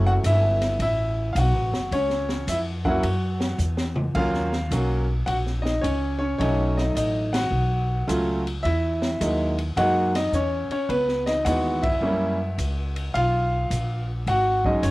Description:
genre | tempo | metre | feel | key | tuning
jazz piano trio | 107 BPM | 4/4 | swing 67% on 8ths | Eb minor from 4.2 s | A4 = 440 Hz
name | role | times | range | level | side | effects
bright concert grand piano | melody | 0.0-14.9 s | Fb3 to F#5 | -23 LUFS | equal | cassette tape
upright bass | bass | 0.0-14.9 s | F#1 to F#2 | -25 LUFS | equal | none
open jazz drum kit | drums | 0.2-14.9 s | crash cymbal, hi-hat, kick drum, ride cymbal, snare drum, toms | -32 LUFS | equal | none
room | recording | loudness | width
moderate booth ambience, RT60 0.2 s | home recording on cassette | -21 LUFS | side -19 dB against mid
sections
0.0-4.2 A section; 4.2-14.9 B section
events
drum fill 3.6-4.2; band accent 7.2, 11.7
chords
0.0 F#m7; 1.9 C#madd11; 3.0 Esus2; 4.2 Ebm9; 6.4 B9; 8.6 Emaj9#11; 10.9 Dbm9; 12.0 Gb7b9; 13.1 B5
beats
0.24 0.80 1.36 | 1.92 2.48 3.03 3.59 | 4.15 4.71 5.28 5.84 | 6.40 6.96 7.52 8.09 | 8.65 9.21 9.77 10.34 | 10.90 11.46 12.02 12.59 | 13.15 13.71 14.27 14.84

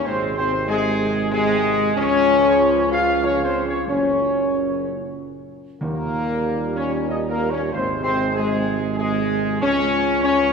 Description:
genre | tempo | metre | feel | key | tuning
classical | 94 BPM | 3/4 | straight | unclear | A4 = 442 Hz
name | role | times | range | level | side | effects
dark trumpet section | melody | 0.0-10.5 s | Ab4 to F5 | -23 LUFS | equal | none
warm French horn section | sustained chords | 0.0-10.5 s | Ab3 to F4 | -21 LUFS | left 3 dB | none
dark trombone section | sustained chords | 0.1-10.5 s | Bb2 to Ab3 | -29 LUFS | right 5 dB | none
mellow tuba | bass | 0.1-10.5 s | Gb1 to Eb2 | -26 LUFS | right 3 dB | none
timpani | percussion | 5.8-6.7 s | Eb3 | -31 LUFS | equal | none
room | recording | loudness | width
wet concert hall reverb, RT60 2.3 s | recorded in a church or concert hall | -18 LUFS | side -5 dB against mid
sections
0.0-10.5 A section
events
none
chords
0.0 Ab; 2.0 Db; 3.9 Gb; 5.8 Eb; 7.7 Ab; 9.6 Db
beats
| 0.04 0.68 1.32 | 1.97 2.60 3.23 | 3.87 4.52 5.17 | 5.81 6.46 7.09 | 7.72 8.35 8.98 | 9.62 10.25

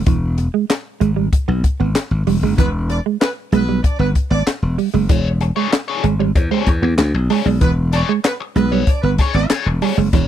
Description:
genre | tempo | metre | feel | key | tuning
funk | 95 BPM | 4/4 | straight | E mixolydian | A4 = 440 Hz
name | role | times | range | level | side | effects
glassy slap bass | bass | 0.0-10.3 s | E1 to E2 | -17 LUFS | left 1 dB | none
clean electric guitar | riff | 0.1-10.2 s | E3 to B3 | -19 LUFS | right 12 dB | none
compact cocktail drum kit | drums | 0.1-10.3 s | handclaps, hi-hat, kick drum, snare drum | -17 LUFS | left 1 dB | none
warm horn section | second line | 2.6-9.5 s | B3 to D5 | -25 LUFS | right 1 dB | none
biting overdriven guitar | accompaniment | 5.1-10.3 s | D4 to C#5 | -23 LUFS | left 7 dB | wah
room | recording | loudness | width
small room ambience | dry, close 1970s-style studio recording | -15 LUFS | side -11 dB against mid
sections
0.0-10.3 A section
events
break 0.1-5.1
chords
0.0 E13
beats
| 0.06 0.69 1.32 1.95 | 2.58 3.21 3.84 4.47 | 5.10 5.72 6.35 6.98 | 7.61 8.24 8.87 9.50 | 10.13

